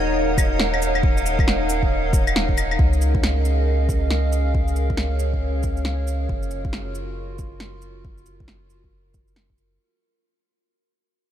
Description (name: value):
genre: future garage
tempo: 137 BPM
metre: 4/4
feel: swing 62% on 16ths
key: unclear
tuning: A4 = 438 Hz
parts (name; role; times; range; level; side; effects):
- warbly tape-like pad; sustained chords; 0.0-9.8 s; Db4 to Gb5; -25 LUFS; right 1 dB; chorus, built-in reverb, sidechain pumping
- soft dub sub bass; bass; 0.0-9.8 s; Eb1 to Db2; -23 LUFS; equal; sidechain pumping
- backwards swelling texture; texture; 0.0-2.8 s; Eb5; -33 LUFS; right 2 dB; built-in reverb
- electronic cabasa, shaker, claves and snare drum; drums; 0.4-9.7 s; none; -27 LUFS; equal; overdrive
- electronic kick drum; drums; 0.4-9.6 s; none; -22 LUFS; equal; overdrive
room: light reverb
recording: none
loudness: -18 LUFS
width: side -10 dB against mid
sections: 0.0-2.8 A section; 2.8-9.8 B section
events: fade-out 2.8-9.8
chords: 0.0 Ebm7; 2.8 Db6; 6.3 Gbmaj7